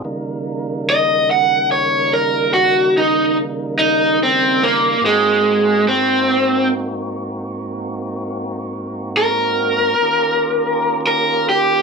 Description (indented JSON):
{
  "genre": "blues",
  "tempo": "48 BPM (dotted quarters)",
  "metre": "12/8",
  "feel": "straight",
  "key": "Eb mixolydian",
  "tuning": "A4 = 440 Hz",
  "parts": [
    { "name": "tonewheel organ", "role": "sustained chords", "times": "0.0-11.8 s", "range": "Ab2 to G4", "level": "-24 LUFS", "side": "right 2 dB", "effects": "slow rotary speaker, plate reverb" },
    { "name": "overdriven electric guitar", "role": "melody", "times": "0.9-11.8 s", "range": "Ab3 to Gb5", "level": "-14 LUFS", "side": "right 1 dB", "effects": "plate reverb" }
  ],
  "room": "wet studio reverb, RT60 0.6 s",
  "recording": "none",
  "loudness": "-14 LUFS",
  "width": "side -4 dB against mid",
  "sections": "0.1-11.8 A section",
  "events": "overdriven electric guitar solo 0.1-11.8",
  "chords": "0.1 Eb7; 5.0 Ab9; 10.0 Eb9"
}